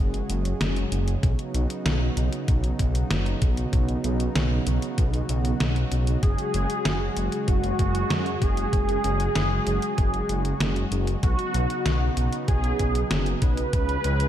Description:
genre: synthwave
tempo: 96 BPM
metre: 4/4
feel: straight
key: unclear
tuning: A4 = 436 Hz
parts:
  - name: warm analog pad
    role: sustained chords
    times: 0.0-14.3 s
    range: C#3 to G#4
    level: -30 LUFS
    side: right 1 dB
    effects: chorus
  - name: wide detuned saw bass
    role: bass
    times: 0.0-14.3 s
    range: F#1 to F#2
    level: -25 LUFS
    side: equal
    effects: chorus, tube saturation
  - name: detuned 8-bit digital drum machine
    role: drums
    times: 0.1-14.3 s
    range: hi-hat, snare drum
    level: -30 LUFS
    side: equal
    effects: none
  - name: electronic kick drum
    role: drums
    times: 1.2-13.9 s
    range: none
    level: -23 LUFS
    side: equal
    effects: none
  - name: wide unison lead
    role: melody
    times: 6.2-14.3 s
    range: F#4 to B4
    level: -28 LUFS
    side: right 1 dB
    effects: wide subtle chorus, tape echo
room: light reverb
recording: dark, warm production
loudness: -22 LUFS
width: side -11 dB against mid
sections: 0.0-14.3 A section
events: none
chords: 0.0 F#sus2; 1.2 Badd9; 6.2 F#sus2; 11.2 Badd9; 13.7 C#

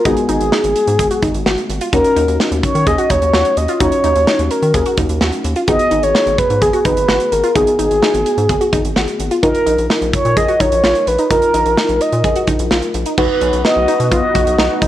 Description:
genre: synth-pop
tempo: 128 BPM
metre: 4/4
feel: straight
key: Eb minor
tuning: A4 = 442 Hz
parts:
  - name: mellow horn-like synth lead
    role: melody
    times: 0.0-14.8 s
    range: Ab4 to Eb5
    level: -15 LUFS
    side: equal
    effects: chorus, tape echo
  - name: mellow FM electric piano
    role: accompaniment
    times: 0.1-14.9 s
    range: Ab3 to B4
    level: -21 LUFS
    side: left 2 dB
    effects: chorus
  - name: wide unison pluck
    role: arpeggios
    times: 0.1-14.9 s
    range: Db4 to Ab4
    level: -21 LUFS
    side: right 1 dB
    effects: tape echo
  - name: rubbery square bass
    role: bass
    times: 0.1-14.9 s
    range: Ab1 to Eb3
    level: -20 LUFS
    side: equal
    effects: none
  - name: modern studio drum kit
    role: drums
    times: 0.1-14.9 s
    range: crash cymbal, hi-hat, kick drum, snare drum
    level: -19 LUFS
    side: equal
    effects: none
  - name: warm analog pad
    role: sustained chords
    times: 13.2-14.9 s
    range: B3 to F#4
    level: -20 LUFS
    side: left 4 dB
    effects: chorus, phaser
room: light reverb, studio reverb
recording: dry, gritty hardware recording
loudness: -12 LUFS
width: side -13 dB against mid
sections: 0.0-13.2 A section; 13.2-14.9 B section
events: none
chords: 0.0 Abm7; 1.9 Ebm7; 5.7 Abm7; 9.4 Bbsus4; 13.2 B

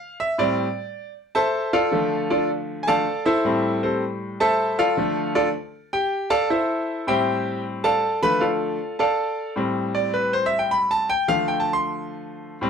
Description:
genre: latin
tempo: 157 BPM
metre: 4/4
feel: straight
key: unclear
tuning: A4 = 441 Hz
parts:
  - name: bright grand piano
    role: solo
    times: 0.0-12.7 s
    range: A2 to C6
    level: -20 LUFS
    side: equal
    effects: none
room: moderate small room reverb, RT60 0.6 s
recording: none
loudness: -20 LUFS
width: side -6 dB against mid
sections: 0.0-12.7 A section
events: grand piano solo 0.0-12.7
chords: 0.4 Am7; 1.9 Dm; 3.4 Am7; 5.0 Dm; 6.5 Am7; 8.0 Dm; 9.6 Am7; 11.1 Dm

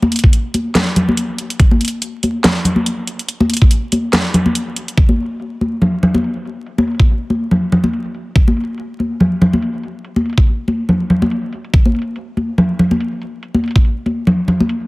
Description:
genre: dubstep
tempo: 142 BPM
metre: 4/4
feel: swing 56% on 16ths, half-time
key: none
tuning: none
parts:
  - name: congas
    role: percussion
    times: 0.0-14.7 s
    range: none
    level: -15 LUFS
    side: equal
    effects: none
  - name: garage drum kit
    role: drums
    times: 0.1-14.8 s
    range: crash cymbal, handclaps, hi-hat, snare drum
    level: -19 LUFS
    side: equal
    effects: low-pass filter on hats, studio ambience, low-pass filter on snare, low-pass filter on cymbals
  - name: electronic kick drum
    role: drums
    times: 0.2-13.8 s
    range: none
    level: -10 LUFS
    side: equal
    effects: overdrive, studio ambience
room: light reverb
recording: dense, heavily limited modern master, vinyl crackle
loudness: -13 LUFS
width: side -22 dB against mid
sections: 0.0-5.0 A section; 5.0-14.9 B section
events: drop 0.0-5.0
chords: none

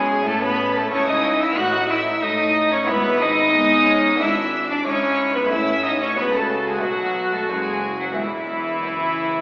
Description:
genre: classical, baroque-style concerto movement with solo episodes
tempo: 91 BPM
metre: 4/4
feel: straight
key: E major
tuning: A4 = 439 Hz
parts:
  - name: rich cello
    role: melody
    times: 0.0-9.4 s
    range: E3 to F#4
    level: -22 LUFS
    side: equal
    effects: none
  - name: rich chamber violin section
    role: melody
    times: 0.0-9.4 s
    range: E5 to F#6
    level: -26 LUFS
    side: equal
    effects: none
  - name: warm chamber violin section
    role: second line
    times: 0.0-9.4 s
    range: E4 to F#5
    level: -23 LUFS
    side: equal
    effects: none
  - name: buff-stop harpsichord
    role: accompaniment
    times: 0.0-9.4 s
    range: E2 to G#4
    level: -33 LUFS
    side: equal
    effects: none
  - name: dark chamber viola section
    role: accompaniment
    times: 0.0-9.4 s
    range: B3 to F#4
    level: -25 LUFS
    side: equal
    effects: none
  - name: rich chamber cello section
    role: bass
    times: 0.0-9.4 s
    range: E2 to A3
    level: -30 LUFS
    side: equal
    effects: none
  - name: rich chamber double bass section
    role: bass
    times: 0.0-9.4 s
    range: E1 to A2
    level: -32 LUFS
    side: equal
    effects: none
room: wet recital hall reverb, RT60 1.6 s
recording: recorded in a church or concert hall, AM radio sound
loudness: -17 LUFS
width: side -26 dB against mid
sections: 0.0-9.4 A section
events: none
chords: 0.3 A; 1.6 B7/A; 2.9 E/G#; 4.2 E7/G#; 5.5 A; 6.8 B7; 8.2 E

